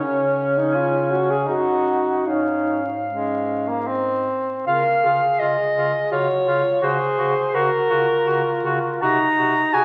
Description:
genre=classical, lyrical piece for single-reed quartet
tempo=72-86 BPM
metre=3/4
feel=rubato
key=Db major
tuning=A4 = 440 Hz
part: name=clear soprano saxophone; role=melody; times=0.0-9.8 s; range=Bb4 to Bb5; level=-24 LUFS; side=equal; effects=none
part: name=mellow alto saxophone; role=second line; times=0.0-9.8 s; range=Db4 to Bb4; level=-26 LUFS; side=equal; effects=none
part: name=clear tenor saxophone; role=accompaniment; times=0.0-9.8 s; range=Ab3 to Gb4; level=-26 LUFS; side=equal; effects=none
part: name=mellow bass clarinet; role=bass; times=0.0-9.8 s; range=Gb2 to Db3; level=-33 LUFS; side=equal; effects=none
room=wet recital hall reverb, RT60 1.6 s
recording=very old 78 rpm record, vinyl crackle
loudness=-20 LUFS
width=mono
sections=0.0-4.7 A section; 4.7-9.8 B section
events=none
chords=0.0 Db5; 1.5 Ebm/Gb; 2.3 Db/Ab; 3.9 Ab; 4.7 Db; 6.8 Gbmaj9#11/Db; 9.0 Ab7/C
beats=| 0.01 0.73 1.47 | 2.27 3.08 3.88 | 4.67 5.41 6.12 | 6.82 7.54 8.25 | 9.02 9.74

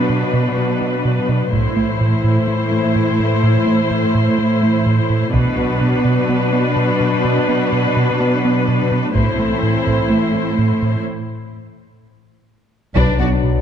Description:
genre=cinematic, hybrid orchestral and electronic film score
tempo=126 BPM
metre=4/4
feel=straight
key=B phrygian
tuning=A4 = 443 Hz
part: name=warm symphonic viola section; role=accompaniment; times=0.0-13.3 s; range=D4 to C5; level=-21 LUFS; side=left 1 dB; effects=none
part: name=warm analog pad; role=sustained chords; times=0.0-13.6 s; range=E3 to C5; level=-22 LUFS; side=left 2 dB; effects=chorus
part: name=rich symphonic cello section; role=bass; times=0.0-13.3 s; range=A2 to B2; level=-20 LUFS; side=right 1 dB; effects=none
part: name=round analog bass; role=riff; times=0.1-13.6 s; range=A2 to B3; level=-19 LUFS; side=right 2 dB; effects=none
part: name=taiko ensemble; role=drums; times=1.5-2.4, 5.3-6.3, 9.2-10.1, 13.0-13.4 s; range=none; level=-24 LUFS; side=left 2 dB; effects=none
part: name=warm symphonic violin section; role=melody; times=13.0-13.3 s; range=B4 to D5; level=-26 LUFS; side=left 5 dB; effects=none
part: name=rich studio violin section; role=second line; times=13.0-13.3 s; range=D4 to F#4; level=-24 LUFS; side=left 1 dB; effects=none
part: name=warm French horn section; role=sustained chords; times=13.0-13.6 s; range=F#3 to D4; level=-23 LUFS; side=left 10 dB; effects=none
part: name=dark detuned saw bass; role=bass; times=13.0-13.6 s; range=B1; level=-20 LUFS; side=left 1 dB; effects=none
part: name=warm symphonic double bass section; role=bass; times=13.0-13.3 s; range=B1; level=-24 LUFS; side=right 2 dB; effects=none
part: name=warm tuba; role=bass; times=13.0-13.3 s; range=B1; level=-25 LUFS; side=right 3 dB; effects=none
room=moderate concert hall reverb, RT60 2.2 s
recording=dark, warm production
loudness=-14 LUFS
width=side -8 dB against mid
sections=0.0-13.0 A section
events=break 11.1-13.0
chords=0.0 Bm; 1.5 Am; 5.3 Bm; 9.2 Am; 11.1 N.C.; 13.0 Bm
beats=0.10 0.58 1.05 | 1.53 2.01 2.48 2.96 | 3.44 3.91 4.39 4.87 | 5.34 5.82 6.29 6.77 | 7.25 7.72 8.20 8.67 | 9.15 9.63 10.10 10.58 | 11.05 11.53 12.01 12.48 | 12.96 13.44

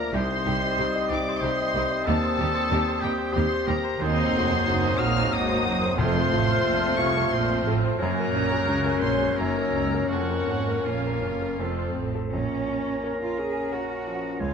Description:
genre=classical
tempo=79-95 BPM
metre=3/4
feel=rubato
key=Bb minor from 4.0 s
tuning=A4 = 440 Hz
part: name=clear concert grand piano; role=melody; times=0.0-14.5 s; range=Bb1 to Eb5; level=-28 LUFS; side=left 1 dB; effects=none
part: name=muted chamber violin section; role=melody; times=0.0-14.2 s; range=F5 to F6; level=-31 LUFS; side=left 4 dB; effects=none
part: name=bright large flute ensemble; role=second line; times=0.0-14.5 s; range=Db5 to Gb6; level=-35 LUFS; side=right 1 dB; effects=none
part: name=clear clarinet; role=second line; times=0.0-14.5 s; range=A4 to Db5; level=-36 LUFS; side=left 1 dB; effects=none
part: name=clear oboe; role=second line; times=0.0-14.5 s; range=F4 to Bb5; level=-33 LUFS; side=right 2 dB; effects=none
part: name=mellow bassoon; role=accompaniment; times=0.0-14.5 s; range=F3 to Db4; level=-34 LUFS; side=right 3 dB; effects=none
part: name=dark French horn section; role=sustained chords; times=0.0-14.5 s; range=A3 to Bb4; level=-33 LUFS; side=left 7 dB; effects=none
part: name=muted chamber violin section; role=second line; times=0.1-14.2 s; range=C4 to Db5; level=-35 LUFS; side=left 2 dB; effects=none
part: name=muted studio viola section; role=accompaniment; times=0.1-14.2 s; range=F3 to Bb4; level=-33 LUFS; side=left 1 dB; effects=none
part: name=muted chamber cello section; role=bass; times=0.1-14.5 s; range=C2 to Ab4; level=-32 LUFS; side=right 4 dB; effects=none
part: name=muted symphonic double bass section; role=bass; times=0.1-14.5 s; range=F1 to Eb2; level=-31 LUFS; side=right 5 dB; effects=none
part: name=timpani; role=percussion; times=6.0-6.9, 12.3-13.4 s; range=F2 to Bb2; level=-32 LUFS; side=left 1 dB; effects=none
room=light reverb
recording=close, detailed microphones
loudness=-22 LUFS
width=side -6 dB against mid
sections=0.0-12.3 A section; 12.3-14.5 B section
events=none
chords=0.1 Cm; 2.1 Cm/Eb; 4.0 Cdim; 6.0 F; 8.0 Gb; 9.4 Gb7; 10.1 Bbm/F; 11.6 F; 12.3 Bbm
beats=| 0.13 0.78 1.43 | 2.08 2.71 3.35 | 4.01 4.67 5.33 | 6.00 6.66 7.33 | 7.99 8.66 9.36 | 10.09 10.84 11.59 | 12.33 13.04 13.73 | 14.40

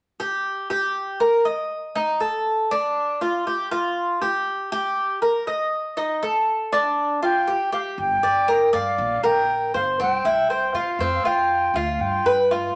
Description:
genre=latin, Cuban son and guajira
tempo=119 BPM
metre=4/4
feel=straight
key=G minor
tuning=A4 = 439 Hz
part: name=Cuban tres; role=arpeggios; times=0.2-12.8 s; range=C4 to Eb5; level=-23 LUFS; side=equal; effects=none
part: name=silver concert flute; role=melody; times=7.2-12.5 s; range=F5 to G5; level=-25 LUFS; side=equal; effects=none
part: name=upright bass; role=bass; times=8.0-12.7 s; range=G1 to C3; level=-36 LUFS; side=equal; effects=none
room=wet studio reverb, RT60 0.9 s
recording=none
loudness=-22 LUFS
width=mono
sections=0.0-8.0 A section; 8.0-12.8 B section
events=none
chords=0.0 N.C.; 0.9 Eb; 2.0 D5; 3.0 G5; 5.0 Eb; 6.0 D5; 7.0 G5; 8.0 Gm; 9.0 Bb; 10.0 C; 11.0 F5; 12.0 G7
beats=0.45 0.95 1.45 | 1.95 2.46 2.96 3.46 | 3.96 4.47 4.97 5.47 | 5.97 6.48 6.98 7.48 | 7.98 8.49 8.99 9.49 | 9.99 10.50 11.00 11.50 | 12.01 12.51

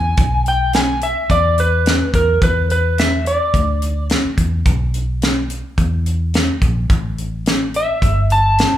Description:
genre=straight-eighth soul blues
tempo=107 BPM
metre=4/4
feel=swing 56% on 16ths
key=unclear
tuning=A4 = 441 Hz
part: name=electric slide guitar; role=melody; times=0.0-4.1, 7.8-8.8 s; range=A#4 to A5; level=-17 LUFS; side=equal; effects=none
part: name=vintage muted fingered electric bass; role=bass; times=0.0-8.8 s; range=G1 to E2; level=-18 LUFS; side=equal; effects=none
part: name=tight funk drum kit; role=drums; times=0.2-8.7 s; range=hi-hat, kick drum, snare drum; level=-18 LUFS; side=equal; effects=none
room=moderate large studio reverb, RT60 1.2 s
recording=band playing live in one room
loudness=-14 LUFS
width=side -12 dB against mid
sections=0.0-8.8 A section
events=none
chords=0.0 E5; 6.9 A5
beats=| 0.18 0.74 1.30 1.86 | 2.42 2.98 3.54 4.09 | 4.66 5.21 5.78 6.33 | 6.89 7.46 8.02 8.57

